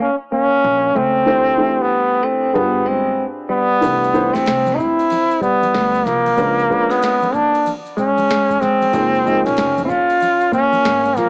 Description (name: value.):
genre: hip hop, jazz-hop.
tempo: 94 BPM.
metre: 4/4.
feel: swing 64% on 16ths.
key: unclear.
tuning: A4 = 441 Hz.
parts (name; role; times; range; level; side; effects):
bright trombone; melody; 0.0-11.3 s; A#3 to E#4; -18 LUFS; equal; cassette tape, tape echo.
semi-hollow electric guitar; second line; 0.0-11.3 s; F3 to C#4; -26 LUFS; equal; lush chorus.
upright bass; bass; 0.6-11.3 s; F#1 to E2; -30 LUFS; equal; none.
dark grand piano; accompaniment; 1.3-10.1 s; E3 to D#5; -24 LUFS; equal; none.
booming analog drum machine; drums; 3.8-11.3 s; hi-hat, kick drum, ride cymbal, snare drum; -31 LUFS; equal; cassette tape.
maracas and congas; percussion; 3.8-11.3 s; none; -37 LUFS; equal; none.
room: light reverb.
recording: home recording on cassette, small speaker sound.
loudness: -16 LUFS.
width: mono.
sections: 0.0-11.3 A section.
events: none.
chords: 0.0 F# (rootless); 1.3 Dsus2; 2.5 G7b9; 3.8 Cmaj9; 6.4 C#7b9; 8.9 F#maj9.